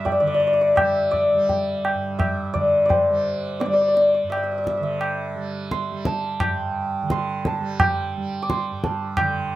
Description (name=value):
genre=indian classical, Hindustani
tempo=86 BPM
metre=4/4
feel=straight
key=G raga durga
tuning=A4 = 439 Hz
part: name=santur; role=melody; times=0.0-9.6 s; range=C5 to D6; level=-21 LUFS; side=left 1 dB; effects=none
part: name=tanpura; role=drone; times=0.0-9.6 s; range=G2 to G3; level=-30 LUFS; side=right 4 dB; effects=none
part: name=tabla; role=percussion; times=0.1-9.4 s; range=none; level=-24 LUFS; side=equal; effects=none
room=moderate studio reverb, RT60 0.5 s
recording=none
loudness=-19 LUFS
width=side -15 dB against mid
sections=0.0-9.2 A section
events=speeding up 0.0-9.6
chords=none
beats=0.05 | 0.77 1.48 2.19 2.90 | 3.61 4.31 5.01 5.71 | 6.41 7.11 7.80 8.49 | 9.18